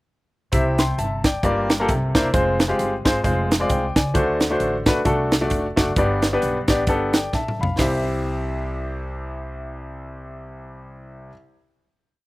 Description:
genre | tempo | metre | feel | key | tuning
uptempo gospel | 132 BPM | 4/4 | swing 58% on 8ths | C major | A4 = 440 Hz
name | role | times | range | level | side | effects
bright concert grand piano | accompaniment | 0.5-11.3 s | C2 to C6 | -22 LUFS | left 1 dB | slapback echo
upright bass | bass | 0.5-11.3 s | E1 to D2 | -27 LUFS | equal | none
crisp fusion drum kit | drums | 0.5-7.9 s | hi-hat, kick drum, snare drum, toms | -20 LUFS | right 1 dB | none
room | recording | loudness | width
little or no reverb | recorded outdoors, with no room sound | -18 LUFS | side -19 dB against mid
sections
0.5-7.8 verse; 7.8-11.4 final chord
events
drum fill 7.3-7.8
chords
0.5 C; 1.4 Gm7; 1.9 C9; 2.3 Fm; 4.2 D7; 6.0 G; 7.8 C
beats
| 0.53 0.98 1.43 1.89 | 2.34 2.79 3.24 3.70 | 4.15 4.61 5.06 5.51 | 5.97 6.43 6.88 7.34 | 7.79 8.25 8.70 9.16 | 9.61 10.07 10.52 10.97

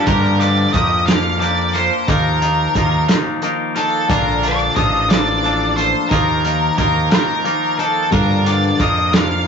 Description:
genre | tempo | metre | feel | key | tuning
indie rock | 60 BPM (dotted quarters) | 6/8 | straight | G minor | A4 = 440 Hz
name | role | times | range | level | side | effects
octave-fuzz lead guitar | melody | 0.0-9.5 s | A4 to F5 | -18 LUFS | equal | distortion
twangy electric guitar | riff | 0.0-9.5 s | G2 to Bb4 | -20 LUFS | left 6 dB | spring reverb
twangy electric guitar | riff | 0.0-9.5 s | Eb3 to G4 | -24 LUFS | right 4 dB | none
growling fingered electric bass | bass | 0.1-9.5 s | A1 to G2 | -20 LUFS | right 1 dB | overdrive
loose indie drum kit | drums | 0.1-9.3 s | hi-hat, kick drum, snare drum | -19 LUFS | right 1 dB | none
room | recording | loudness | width
moderate studio reverb, RT60 0.6 s | rough rehearsal-room recording, nothing above 7.7 kHz | -14 LUFS | side -6 dB against mid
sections
0.1-9.5 A section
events
none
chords
0.1 Gm7; 2.1 Ebsus2; 4.1 Bbmaj7; 6.1 Ebsus2; 8.1 Gm7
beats
| 0.07 1.07 | 2.08 3.09 | 4.09 5.10 | 6.11 7.12 | 8.12 9.13

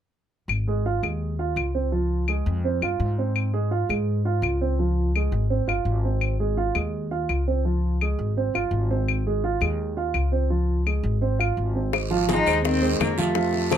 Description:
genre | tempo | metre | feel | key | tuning
Afro-Cuban jazz | 168 BPM | 4/4 | straight | Ab major | A4 = 440 Hz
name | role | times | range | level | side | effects
upright bass | bass | 0.5-13.8 s | G1 to Ab2 | -25 LUFS | left 1 dB | none
claves | percussion | 0.5-13.8 s | none | -28 LUFS | left 11 dB | none
dark concert grand piano | accompaniment | 0.7-13.8 s | F3 to F5 | -26 LUFS | right 6 dB | none
bongos | percussion | 11.9-13.8 s | none | -28 LUFS | left 11 dB | none
congas | percussion | 11.9-13.8 s | none | -30 LUFS | left 4 dB | none
guiro | percussion | 11.9-13.8 s | none | -33 LUFS | right 5 dB | none
warm cello | melody | 12.3-13.8 s | A3 to Eb4 | -24 LUFS | left 1 dB | none
clear trombone | second line | 12.3-13.8 s | C3 to Ab3 | -29 LUFS | left 8 dB | none
room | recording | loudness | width
light reverb | none | -22 LUFS | side -9 dB against mid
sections
0.5-11.9 A section; 11.9-13.8 B section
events
none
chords
0.5 Ab6; 1.9 Dbmaj7; 3.4 Ab6; 4.8 Dbmaj7; 6.2 Ab6; 7.7 Dbmaj7; 9.1 Ab6; 10.5 Dbmaj7; 11.9 Ab6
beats
| 0.49 0.85 1.21 1.57 | 1.93 2.28 2.64 3.00 | 3.36 3.72 4.08 4.43 | 4.79 5.15 5.51 5.87 | 6.22 6.58 6.94 7.30 | 7.65 8.01 8.37 8.72 | 9.08 9.44 9.79 10.15 | 10.51 10.87 11.22 11.58 | 11.93 12.29 12.64 13.00 | 13.36 13.71

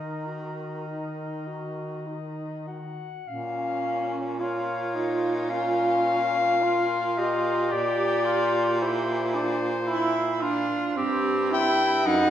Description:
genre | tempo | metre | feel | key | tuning
classical, lyrical piece for single-reed quartet | 49-56 BPM | 4/4 | rubato | Eb minor | A4 = 439 Hz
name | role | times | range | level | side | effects
clear clarinet | melody | 0.0-12.3 s | C5 to G5 | -28 LUFS | left 3 dB | none
clear alto saxophone | second line | 0.0-12.3 s | C4 to Bb4 | -30 LUFS | right 4 dB | none
warm tenor saxophone | accompaniment | 0.0-12.3 s | Db4 to G4 | -30 LUFS | left 1 dB | none
warm baritone saxophone | bass | 0.0-12.3 s | Gb2 to Eb3 | -30 LUFS | right 2 dB | none
room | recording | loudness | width
wet recital hall reverb, RT60 1.3 s | recorded in a church or concert hall | -23 LUFS | side -10 dB against mid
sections
0.0-3.3 A section; 3.3-12.3 B section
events
none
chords
0.0 Ebm; 3.3 Bbm; 7.7 C7/Bb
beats
0.88 2.07 | 3.28 4.40 5.51 6.63 | 7.73 8.82 9.89 10.97 | 12.07

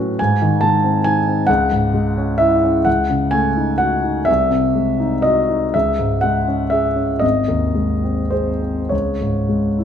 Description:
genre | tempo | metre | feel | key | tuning
classical, romantic nocturne for solo piano | 34-48 BPM (dotted quarters) | 6/8 | rubato | C# minor | A4 = 440 Hz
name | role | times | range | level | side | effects
warm concert grand piano | solo | 0.0-9.8 s | G#1 to A5 | -15 LUFS | equal | none
room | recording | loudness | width
moderate recital hall reverb, RT60 1.5 s | none | -15 LUFS | side -8 dB against mid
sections
0.0-9.8 A section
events
none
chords
0.2 G#; 1.5 C#m; 2.9 D#m7b5/C#; 4.3 G#7/B#; 5.7 C#5; 7.2 G#; 8.9 C#5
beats
| 0.19 1.49 | 2.86 4.28 | 5.75 7.23 | 8.92

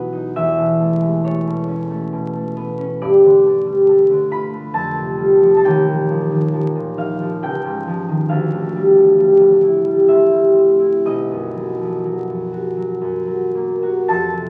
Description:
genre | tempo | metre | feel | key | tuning
classical, solo harp piece | 55-70 BPM | 3/4 | rubato | unclear | A4 = 439 Hz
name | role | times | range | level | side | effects
concert harp | solo | 0.0-14.5 s | B1 to B5 | -16 LUFS | equal | none
room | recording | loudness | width
moderate stone room reverb, RT60 1.2 s | very old 78 rpm record, vinyl crackle | -16 LUFS | mono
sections
0.0-14.1 A section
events
none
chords
0.3 B11/E; 3.0 G9; 4.7 Fadd9; 5.6 Ebadd9; 7.4 Dbadd9; 8.3 Dm11; 11.1 Bmaj7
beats
| 0.33 1.22 2.11 | 3.00 3.86 4.73 | 5.63 6.51 7.40 | 8.29 9.17 10.09 | 11.06 12.05 13.02 | 14.07

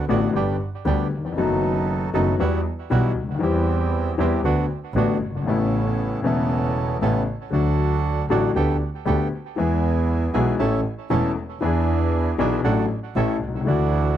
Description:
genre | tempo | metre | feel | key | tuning
tango | 117 BPM | 4/4 | rubato | D major | A4 = 440 Hz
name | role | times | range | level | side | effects
warm grand piano | accompaniment | 0.0-14.2 s | E1 to A4 | -22 LUFS | left 4 dB | none
bandoneon | stabs | 0.0-14.2 s | G3 to A4 | -28 LUFS | right 10 dB | tape echo
warm double bass | bass | 0.0-14.2 s | E1 to E2 | -24 LUFS | right 2 dB | none
room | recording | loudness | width
little or no reverb | dry, close 1970s-style studio recording | -20 LUFS | side -11 dB against mid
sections
0.0-14.2 A section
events
none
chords
0.3 G; 1.4 B7/F#; 2.4 Emadd9; 3.4 C/E; 4.4 D6; 5.5 Aadd9; 7.5 D; 8.6 Gadd9/D; 9.6 E; 10.6 A; 11.6 E7; 12.6 D/A; 13.2 A; 13.7 Dadd9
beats
0.35 0.86 | 1.37 1.88 2.39 2.91 | 3.42 3.93 4.44 4.96 | 5.47 5.98 6.50 7.01 | 7.53 8.04 8.55 9.07 | 9.58 10.09 10.60 11.11 | 11.62 12.13 12.65 13.16 | 13.67

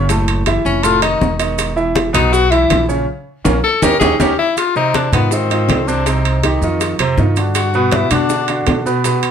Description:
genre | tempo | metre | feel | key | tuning
Afro-Cuban jazz | 161 BPM | 4/4 | straight | unclear | A4 = 444 Hz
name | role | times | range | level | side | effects
clear baby grand piano | accompaniment | 0.0-9.3 s | A2 to E5 | -17 LUFS | right 2 dB | none
upright bass | bass | 0.0-9.3 s | E1 to B2 | -19 LUFS | equal | none
bongos | percussion | 0.1-9.2 s | none | -25 LUFS | left 4 dB | none
congas | percussion | 0.1-9.3 s | none | -22 LUFS | left 1 dB | none
maracas | percussion | 0.1-9.3 s | none | -30 LUFS | right 9 dB | none
timbales | percussion | 0.1-9.3 s | none | -22 LUFS | right 8 dB | none
warm tenor saxophone | second line | 0.7-8.5 s | B3 to A#4 | -17 LUFS | left 6 dB | none
room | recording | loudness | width
moderate studio reverb, RT60 0.7 s | none | -13 LUFS | side -8 dB against mid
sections
0.0-4.6 A section; 4.6-9.3 A section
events
tenor saxophone solo 0.0-9.3; band accent 3.1-4.6; drum fill 4.0-4.6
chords
0.1 F#m7; 0.8 F7; 1.6 E5; 3.1 A#m; 3.8 D#7; 4.6 G#6; 6.1 Cm; 6.8 Fsus2; 7.6 Gmaj7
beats
| 0.09 0.47 0.84 1.21 | 1.59 1.96 2.33 2.71 | 3.08 3.45 3.83 4.20 | 4.57 4.94 5.32 5.69 | 6.06 6.44 6.81 7.18 | 7.56 7.93 8.30 8.68 | 9.05

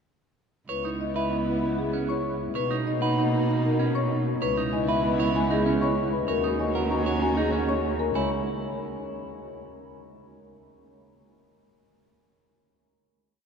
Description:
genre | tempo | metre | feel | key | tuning
classical, minimalist pattern music | 193 BPM | 6/4 | straight | C# dorian | A4 = 440 Hz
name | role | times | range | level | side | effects
marimba with medium hard mallets | melody | 0.7-8.3 s | G#4 to G#5 | -30 LUFS | left 4 dB | none
dark clarinet | second line | 0.7-8.0 s | D#4 to F#4 | -31 LUFS | right 2 dB | none
rich studio string section | sustained chords | 0.7-8.0 s | A#3 to F#4 | -33 LUFS | left 1 dB | none
electric guitar at the edge of break-up | arpeggios | 0.7-8.3 s | C#4 to C#5 | -33 LUFS | right 3 dB | none
rich cello | bass | 0.7-8.3 s | C#2 to B2 | -29 LUFS | right 2 dB | none
celesta | arpeggios | 0.8-8.3 s | D#5 to D#6 | -34 LUFS | left 3 dB | none
room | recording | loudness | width
wet cathedral reverb, RT60 4.8 s | dark, warm production | -23 LUFS | side -6 dB against mid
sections
0.7-8.2 A section; 8.2-10.0 final chord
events
none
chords
0.7 C#m7; 2.6 Bmaj7; 4.4 C#m7; 6.3 D#m7; 8.2 C#m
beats
| 0.69 1.00 1.31 1.62 1.93 2.24 | 2.56 2.87 3.18 3.49 3.80 4.11 | 4.42 4.73 5.04 5.35 5.66 5.97 | 6.29 6.60 6.91 7.22 7.53 7.84 | 8.15

